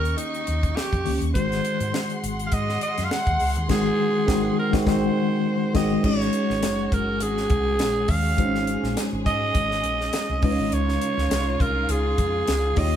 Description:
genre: polished 1980s jazz-funk pop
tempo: 102 BPM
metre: 4/4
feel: swing 54% on 16ths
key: unclear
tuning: A4 = 441 Hz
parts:
  - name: breathy alto saxophone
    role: melody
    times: 0.0-13.0 s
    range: Eb4 to Gb5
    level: -26 LUFS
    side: right 2 dB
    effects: none
  - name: mellow tine electric piano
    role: accompaniment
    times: 0.0-13.0 s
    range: Eb3 to Db5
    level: -25 LUFS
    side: left 2 dB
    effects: fast stereo tremolo
  - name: warm studio string section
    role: sustained chords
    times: 0.0-13.0 s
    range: Db3 to Db6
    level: -34 LUFS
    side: left 1 dB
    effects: none
  - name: hollow-body short-scale fingered electric bass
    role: bass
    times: 0.0-13.0 s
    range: Gb1 to Ab2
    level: -28 LUFS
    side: equal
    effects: none
  - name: tight funk drum kit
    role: drums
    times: 0.1-12.9 s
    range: crash cymbal, hi-hat, kick drum, snare drum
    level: -27 LUFS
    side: equal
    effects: none
room: wet small room reverb, RT60 0.5 s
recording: band playing live in one room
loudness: -20 LUFS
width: side -10 dB against mid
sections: 0.0-6.0 A section; 6.0-13.0 B section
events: band accent 3.7-6.0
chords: 0.0 Eb7; 1.4 Ab7; 6.0 Ab7sus4; 10.4 Dbmaj9

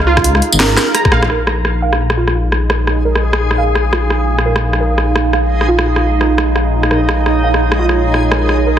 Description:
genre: half-time drum and bass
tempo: 171 BPM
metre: 4/4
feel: swing 59% on 16ths, half-time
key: Bb minor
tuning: A4 = 439 Hz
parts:
  - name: dark analog pad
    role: sustained chords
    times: 0.0-8.8 s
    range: Eb4 to Bb5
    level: -20 LUFS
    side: right 3 dB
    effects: chorus, phaser, sidechain pumping
  - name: warbly dusty pluck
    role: arpeggios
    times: 0.0-8.8 s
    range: F4 to Bb5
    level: -19 LUFS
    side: right 3 dB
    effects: lush chorus, tape echo
  - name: dark detuned saw bass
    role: bass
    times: 0.0-8.8 s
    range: Ab1 to Db2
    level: -16 LUFS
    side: left 1 dB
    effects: none
  - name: drum and bass drum kit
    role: drums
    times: 0.0-8.8 s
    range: hi-hat, rim click, snare drum, tambourine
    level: -17 LUFS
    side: equal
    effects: overdrive, low-pass filter on snare, low-pass filter on hats, low-pass filter on perc, low-pass filter on room
  - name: electronic kick drum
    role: drums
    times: 0.2-1.1 s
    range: none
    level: -15 LUFS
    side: left 1 dB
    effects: overdrive
  - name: backwards swelling texture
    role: texture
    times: 2.4-8.8 s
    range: Ab3 to Ab4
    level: -20 LUFS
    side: equal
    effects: built-in reverb
room: moderate echo chamber reverb, RT60 1.3 s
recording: heavily compressed radio sound, multiband compression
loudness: -11 LUFS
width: side -10 dB against mid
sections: 0.0-1.3 A section; 1.3-8.8 B section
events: drop 0.0-1.3; drum fill 1.0; filter sweep on synth pluck 1.3-8.8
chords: 0.0 Bbm

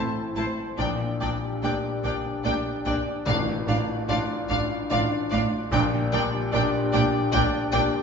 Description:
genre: cinematic, emotional film score for orchestra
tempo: 73 BPM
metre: 3/4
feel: rubato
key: unclear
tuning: A4 = 442 Hz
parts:
  - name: bright concert flute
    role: second line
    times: 0.0-7.8 s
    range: F5 to A5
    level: -36 LUFS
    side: left 1 dB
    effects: none
  - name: mellow clarinet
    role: second line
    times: 0.0-7.9 s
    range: D4 to E4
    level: -37 LUFS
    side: left 1 dB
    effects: none
  - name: mellow oboe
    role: second line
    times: 0.0-7.9 s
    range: C5 to D5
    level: -36 LUFS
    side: equal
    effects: none
  - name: clear grand piano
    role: accompaniment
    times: 0.0-8.0 s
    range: A1 to D5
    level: -31 LUFS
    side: left 1 dB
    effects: none
  - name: rich studio viola section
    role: accompaniment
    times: 0.0-7.8 s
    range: D4 to E4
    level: -35 LUFS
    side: right 2 dB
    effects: none
  - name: warm French horn section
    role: sustained chords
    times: 0.0-8.0 s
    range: C4 to G4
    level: -32 LUFS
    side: left 3 dB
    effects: none
  - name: concert harp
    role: arpeggios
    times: 0.0-8.0 s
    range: A2 to D6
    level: -32 LUFS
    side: left 4 dB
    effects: none
  - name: dark studio double bass section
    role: bass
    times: 0.0-7.8 s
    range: A1 to Bb1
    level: -31 LUFS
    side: right 3 dB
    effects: none
  - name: clear studio violin section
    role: melody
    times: 0.4-7.8 s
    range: F5 to A5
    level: -32 LUFS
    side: left 3 dB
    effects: none
  - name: rich studio violin section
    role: second line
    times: 0.4-7.8 s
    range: C5 to D5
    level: -36 LUFS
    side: left 1 dB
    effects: none
  - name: warm studio cello section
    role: bass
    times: 0.4-7.8 s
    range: A2 to Bb2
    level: -31 LUFS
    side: right 3 dB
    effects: none
  - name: timpani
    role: percussion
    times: 3.3-4.5 s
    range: A2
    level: -34 LUFS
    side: equal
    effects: none
room: wet recital hall reverb, RT60 1.6 s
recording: recorded in a church or concert hall, nothing above 7.8 kHz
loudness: -23 LUFS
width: side -6 dB against mid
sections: 0.0-8.0 A section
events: none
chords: 0.0 Am; 0.8 Gm/Bb; 3.3 Dm/A; 5.7 Gm/Bb

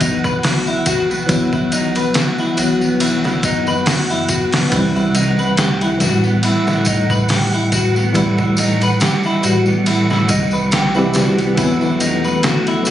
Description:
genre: trip hop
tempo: 70 BPM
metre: 4/4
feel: swing 55% on 16ths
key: E harmonic minor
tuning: A4 = 440 Hz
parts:
  - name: bell-like tine electric piano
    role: accompaniment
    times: 0.0-12.9 s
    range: E3 to G4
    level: -17 LUFS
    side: equal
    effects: tremolo, low-pass filter, tape echo
  - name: clean electric guitar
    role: arpeggios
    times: 0.0-12.9 s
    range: B3 to B4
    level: -20 LUFS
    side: left 2 dB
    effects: lush chorus, ping-pong delay
  - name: dark detuned saw bass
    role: bass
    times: 0.0-12.9 s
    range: E1 to A2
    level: -23 LUFS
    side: equal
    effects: none
  - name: trip hop sampler-style drum kit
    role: drums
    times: 0.0-12.9 s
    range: hi-hat, kick drum, ride cymbal, snare drum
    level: -21 LUFS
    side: equal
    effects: small room ambience
  - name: tambourine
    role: percussion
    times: 0.0-12.9 s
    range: none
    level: -27 LUFS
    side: left 2 dB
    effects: none
  - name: wind-like tuned noise texture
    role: texture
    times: 0.0-12.9 s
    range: F#5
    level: -26 LUFS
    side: right 4 dB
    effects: built-in reverb
  - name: warbly tape-like pad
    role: sustained chords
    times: 11.6-12.9 s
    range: A3 to A4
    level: -24 LUFS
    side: equal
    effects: chorus, built-in reverb
room: light reverb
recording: recorded on a phone in the room, club reverb, compression, nothing above 10.7 kHz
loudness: -13 LUFS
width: side -11 dB against mid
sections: 0.0-12.9 A section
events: filter sweep on tine electric piano 0.0-12.9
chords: 0.0 Esus2; 4.7 C; 11.6 Esus2

